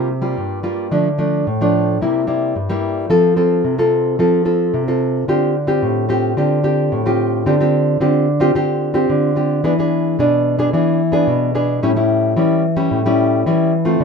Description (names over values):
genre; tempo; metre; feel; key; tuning
samba; 110 BPM; 4/4; straight; F major, D minor from 5.3 s; A4 = 439 Hz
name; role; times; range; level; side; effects
nylon-string guitar; solo; 0.0-14.0 s; G2 to A4; -14 LUFS; equal; none
room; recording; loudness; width
moderate studio reverb, RT60 0.8 s; minimal, uncompressed stereo recording; -14 LUFS; side -5 dB against mid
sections
0.0-5.3 A section; 5.3-14.0 B section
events
none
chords
0.0 C7sus4; 0.9 Dm; 2.0 C7; 3.1 F; 5.3 Dm7; 7.5 G7sus4/D; 9.6 E7; 11.8 A7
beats
0.37 | 0.92 1.47 2.01 2.56 | 3.10 3.65 4.19 4.74 | 5.28 5.83 6.38 6.92 | 7.47 8.01 8.56 9.10 | 9.65 10.19 10.74 11.28 | 11.83 12.37 12.91 13.46 | 14.00